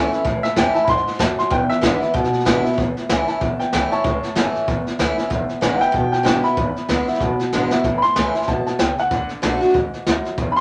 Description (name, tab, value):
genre	rockabilly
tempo	190 BPM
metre	4/4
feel	swing 58% on 8ths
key	A major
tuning	A4 = 439 Hz
part	warm upright piano	melody	0.0-10.6 s	C#4 to C6	-24 LUFS	equal	none
part	picked acoustic archtop guitar	accompaniment	0.0-10.6 s	E2 to F#4	-23 LUFS	equal	none
part	upright bass	bass	0.0-10.6 s	E1 to F#2	-31 LUFS	equal	none
part	jazz brush drum kit	drums	0.1-10.6 s	hi-hat, kick drum, snare drum	-25 LUFS	equal	none
room	wet small room reverb, RT60 0.6 s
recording	nothing above 10.4 kHz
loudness	-19 LUFS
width	mono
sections	0.0-2.8 A section; 2.8-10.6 B section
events	drum fill 7.5-7.8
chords	0.0 A; 1.5 E7; 2.8 A; 5.3 E7; 7.8 A; 9.1 D